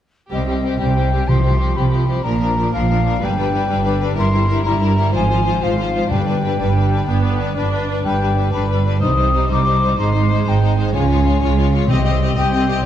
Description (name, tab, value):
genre	cinematic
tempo	124 BPM (dotted quarters)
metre	12/8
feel	straight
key	C harmonic minor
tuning	A4 = 440 Hz
part	rich symphonic violin section	melody	0.3-12.9 s	G4 to Eb5	-26 LUFS	left 6 dB	none
part	rich symphonic violin section	second line	0.3-12.8 s	C4 to G4	-25 LUFS	left 4 dB	none
part	silver concert flute	second line	0.3-12.8 s	Eb5 to Eb6	-23 LUFS	left 3 dB	none
part	clear symphonic viola section	accompaniment	0.3-12.8 s	F3 to D4	-25 LUFS	equal	none
part	rich symphonic cello section	bass	0.3-12.8 s	G2 to Db3	-20 LUFS	right 2 dB	none
part	rich symphonic double bass section	bass	0.3-12.8 s	G1 to Db2	-20 LUFS	right 2 dB	none
part	timpani	percussion	1.3-1.7, 6.1-12.3 s	G2 to C3	-24 LUFS	left 2 dB	none
room	moderate scoring stage reverb, RT60 1.7 s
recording	dark, warm production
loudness	-15 LUFS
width	side -10 dB against mid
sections	0.3-12.9 A section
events	none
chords	0.3 Cm; 1.3 Fsus2/C; 2.2 Bb; 3.2 G; 5.1 Fm/Ab; 6.1 G; 9.0 Cm; 10.0 Ab; 10.9 Db; 11.9 Cm